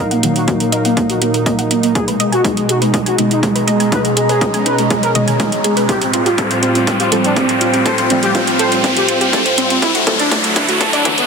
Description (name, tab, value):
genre	melodic techno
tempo	122 BPM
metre	4/4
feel	straight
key	unclear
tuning	A4 = 440 Hz
part	analog synth brass	melody	0.0-11.3 s	Ab3 to C5	-18 LUFS	equal	chorus, sidechain pumping, tape echo
part	warm analog pad	sustained chords	0.0-11.3 s	A2 to F4	-21 LUFS	equal	chorus, sidechain pumping
part	wide unison pluck	arpeggios	0.0-11.2 s	C4 to Ab5	-21 LUFS	right 1 dB	sidechain pumping, tape echo
part	riser	sound effects	1.6-11.3 s	none	-20 LUFS	left 1 dB	none
part	warbly tape-like pad	texture	0.0-11.3 s	D4 to Bb5	-22 LUFS	right 1 dB	chorus, built-in reverb, sidechain pumping
part	electronic hi-hat	drums	0.1-11.3 s	none	-21 LUFS	right 2 dB	sidechain pumping on hats
part	synth brass stab	stabs	0.2-11.3 s	A2 to Ab3	-23 LUFS	left 2 dB	chorus, sidechain pumping, tape echo
part	electronic kick drum	drums	0.5-11.2 s	none	-20 LUFS	left 1 dB	high-pass filter on kick
room	moderate scoring stage reverb, RT60 2.2 s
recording	dense, heavily limited modern master, high-pass filter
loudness	-12 LUFS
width	side -5 dB against mid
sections	0.0-11.3 A section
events	build-up 0.0-11.3; filter sweep on synth arpeggio sound 0.0-11.3; filter sweep on analog polysynth 0.0-11.3; filter sweep on synth stab 0.0-11.3; filter sweep 0.0-11.3; riser 1.6-11.3; drum fill 5.9-11.3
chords	0.0 Ebm; 2.0 Abm; 5.9 Fadd9; 9.8 Dadd9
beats	0.48 0.97 1.46 | 1.96 2.45 2.94 3.43 | 3.92 4.41 4.91 5.40 | 5.89 6.38 6.87 7.37 | 7.86 8.35 8.84 9.33 | 9.82 10.32 10.81